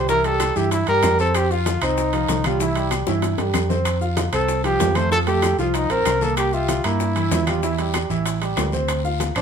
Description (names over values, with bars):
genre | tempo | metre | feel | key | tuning
Afro-Cuban jazz | 191 BPM | 4/4 | straight | C mixolydian | A4 = 440 Hz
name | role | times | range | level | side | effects
breathy trumpet | melody | 0.0-9.4 s | D4 to C5 | -21 LUFS | equal | none
clear baby grand piano | accompaniment | 0.0-9.4 s | E3 to F5 | -24 LUFS | right 4 dB | none
fingered electric bass | bass | 0.0-9.4 s | A1 to G2 | -24 LUFS | left 1 dB | none
bongos | percussion | 0.1-9.4 s | none | -30 LUFS | left 7 dB | none
congas | percussion | 0.1-9.4 s | none | -32 LUFS | equal | none
guiro | percussion | 0.1-9.4 s | none | -37 LUFS | left 6 dB | none
maracas | percussion | 0.1-9.4 s | none | -36 LUFS | left 6 dB | none
timbales | percussion | 0.2-9.4 s | none | -30 LUFS | right 5 dB | none
claves | percussion | 0.4-9.4 s | none | -35 LUFS | left 9 dB | none
room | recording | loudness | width
moderate studio reverb, RT60 0.7 s | minimal, uncompressed stereo recording | -18 LUFS | side -7 dB against mid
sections
0.0-9.4 A section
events
drum fill 2.9-3.9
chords
0.0 C7; 1.3 F5; 2.6 C; 3.9 F; 6.4 C7; 7.6 Em; 8.3 A5; 8.9 Dm7